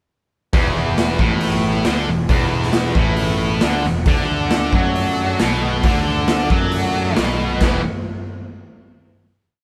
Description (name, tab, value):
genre	blues rock power trio and southern rock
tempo	136 BPM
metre	4/4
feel	straight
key	E mixolydian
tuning	A4 = 440 Hz
part	overdriven tonewheel organ	sustained chords	0.5-7.8 s	A3 to B5	-31 LUFS	equal	none
part	tight distorted guitar	riff	0.5-7.8 s	E2 to F#3	-22 LUFS	equal	distortion
part	fuzz picked electric bass	bass	0.5-7.8 s	E1 to F#2	-25 LUFS	equal	overdrive
part	raw garage drum kit	drums	0.5-7.7 s	crash cymbal, hi-hat, kick drum, snare drum	-22 LUFS	equal	none
room	moderate studio reverb, RT60 0.7 s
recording	band playing live in one room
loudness	-18 LUFS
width	mono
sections	0.5-7.6 riff; 7.6-9.4 final chord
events	tonewheel organ fill 3.2-4.1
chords	0.5 E; 4.1 D5; 7.6 E